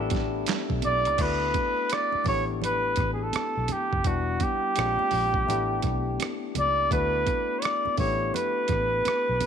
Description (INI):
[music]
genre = R&B, neo-soul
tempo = 84 BPM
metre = 4/4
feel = swing 63% on 16ths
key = unclear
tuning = A4 = 438 Hz
[part]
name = electric guitar through a small old amp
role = second line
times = 0.0-1.0 s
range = E4 to A4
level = -38 LUFS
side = right 12 dB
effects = none
[part]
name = barky tine electric piano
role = accompaniment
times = 0.0-9.5 s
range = G3 to F#5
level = -32 LUFS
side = left 12 dB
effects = overdrive
[part]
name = vintage muted fingered electric bass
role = bass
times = 0.0-9.4 s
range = E1 to D2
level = -31 LUFS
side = equal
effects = none
[part]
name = boom bap sampler-style drum kit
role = drums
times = 0.1-9.5 s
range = crash cymbal, handclaps, hi-hat, kick drum, rim click, snare drum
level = -30 LUFS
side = right 3 dB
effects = none
[part]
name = congas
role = percussion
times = 0.1-9.5 s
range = none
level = -39 LUFS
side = right 13 dB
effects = none
[part]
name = warm flugelhorn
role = melody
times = 0.9-9.5 s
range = F#4 to D5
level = -25 LUFS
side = right 1 dB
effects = none
[sound]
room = light reverb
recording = 1960s-style stereo with parts hard left and right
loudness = -23 LUFS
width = side -8 dB against mid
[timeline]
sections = 0.0-1.2 A section; 1.2-9.5 B section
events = none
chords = 0.0 A9sus4; 1.2 D6; 2.3 A9sus4; 4.0 Em9; 4.8 Bb9; 5.5 A9sus4; 6.9 D6; 8.0 A9sus4